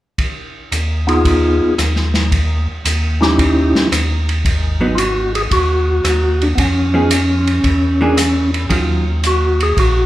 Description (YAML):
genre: soul jazz organ trio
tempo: 113 BPM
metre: 4/4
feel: swing 69% on 8ths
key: G# dorian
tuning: A4 = 440 Hz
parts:
  - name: open jazz drum kit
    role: drums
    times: 0.2-9.9 s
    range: hi-hat, kick drum, ride cymbal, rim click, snare drum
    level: -19 LUFS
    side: equal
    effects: none
  - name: tonewheel organ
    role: bass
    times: 0.7-10.1 s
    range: G#1 to F2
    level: -17 LUFS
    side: equal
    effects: slow rotary speaker
  - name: percussive tonewheel organ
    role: melody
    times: 1.1-10.1 s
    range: B3 to G#4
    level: -16 LUFS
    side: equal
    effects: fast rotary speaker
  - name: vintage hollow-body jazz guitar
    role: accompaniment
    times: 4.8-9.0 s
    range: D#3 to Ab4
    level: -19 LUFS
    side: right 1 dB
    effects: none
room: moderate recital hall reverb, RT60 1.6 s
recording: recorded in a church or concert hall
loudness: -13 LUFS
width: side -14 dB against mid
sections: 0.2-4.4 A section; 4.4-10.1 B section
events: none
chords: 0.2 G#m6/D#; 4.4 G#7(no3); 6.6 Fm7b5; 7.6 E7#11; 8.7 D#m9